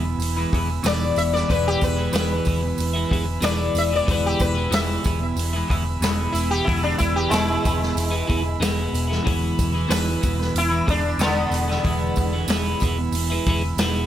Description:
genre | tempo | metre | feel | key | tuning
psychedelic rock | 93 BPM | 4/4 | straight | E major | A4 = 440 Hz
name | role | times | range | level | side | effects
overdriven combo organ | sustained chords | 0.0-14.1 s | G#3 to B5 | -33 LUFS | right 6 dB | wide subtle chorus
twelve-string electric guitar | riff | 0.0-14.1 s | E2 to E4 | -25 LUFS | equal | phaser
hollow-body short-scale picked electric bass | bass | 0.0-14.0 s | E1 | -25 LUFS | equal | none
vintage drum kit | drums | 0.2-13.9 s | hi-hat, kick drum, snare drum | -26 LUFS | equal | none
tambourine | percussion | 0.2-13.9 s | none | -35 LUFS | right 11 dB | none
sitar | melody | 0.9-12.5 s | D3 to E5 | -25 LUFS | left 2 dB | tape echo
room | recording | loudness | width
little or no reverb | none | -19 LUFS | side -11 dB against mid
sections
0.0-14.1 A section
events
sitar solo 0.0-14.1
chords
0.0 E

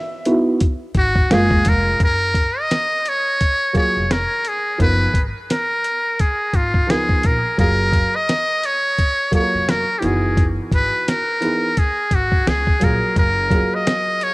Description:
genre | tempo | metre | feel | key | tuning
hip hop, jazz-hop | 86 BPM | 4/4 | swing 61% on 16ths | F# major | A4 = 441 Hz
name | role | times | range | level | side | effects
dark upright piano | accompaniment | 0.0-14.3 s | E3 to E5 | -21 LUFS | right 1 dB | cassette tape
dusty soul sampler-style drum kit | drums | 0.3-14.3 s | hi-hat, kick drum, snare drum | -18 LUFS | equal | cassette tape
upright bass | bass | 0.9-13.6 s | E#1 to C#2 | -23 LUFS | equal | none
trumpet with metal mute | melody | 1.0-14.3 s | E#4 to D#5 | -19 LUFS | equal | cassette tape, analog delay
room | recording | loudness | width
light reverb | home recording on cassette | -15 LUFS | side -22 dB against mid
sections
0.0-2.0 A section; 2.0-14.3 B section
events
upright piano solo 0.0-2.0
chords
0.0 F#13sus4; 1.3 F#maj9; 4.8 F#maj13; 6.9 C#13; 7.6 F#maj9; 10.0 Emaj9#11/F#; 12.5 C#; 13.2 F#maj9

